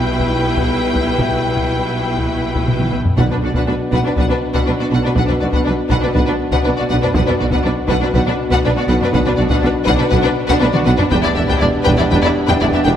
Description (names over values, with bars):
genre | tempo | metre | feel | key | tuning
cinematic, epic orchestral film score | 121 BPM | 4/4 | straight | B minor from 3.2 s | A4 = 440 Hz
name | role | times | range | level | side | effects
clear symphonic violin section | melody | 0.0-12.9 s | B4 to G5 | -22 LUFS | left 4 dB | none
clear symphonic violin section | second line | 0.0-12.9 s | D4 to B4 | -23 LUFS | left 2 dB | none
rich symphonic viola section | accompaniment | 0.0-12.9 s | D4 to E4 | -23 LUFS | right 2 dB | none
mellow French horn section | sustained chords | 0.0-13.0 s | G3 to G4 | -23 LUFS | left 4 dB | none
clear symphonic double bass section | bass | 0.0-12.9 s | E1 to B1 | -23 LUFS | right 2 dB | none
rich studio cello section | bass | 0.0-12.9 s | E2 to B2 | -22 LUFS | right 1 dB | none
taiko ensemble | drums | 0.2-12.9 s | none | -21 LUFS | equal | none
bright trombone section | sustained chords | 3.2-13.0 s | B2 to B3 | -25 LUFS | right 2 dB | none
dark tuba | bass | 3.2-12.9 s | E1 to B1 | -23 LUFS | right 3 dB | none
timpani | percussion | 3.2-3.9 s | B2 | -24 LUFS | equal | none
room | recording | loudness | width
wet concert hall reverb, RT60 1.8 s | none | -13 LUFS | side -10 dB against mid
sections
0.0-3.2 A section; 3.2-13.0 B section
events
drum fill 2.7-3.2, 10.6-11.1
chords
0.0 Em/B; 3.2 Bm; 11.1 Em7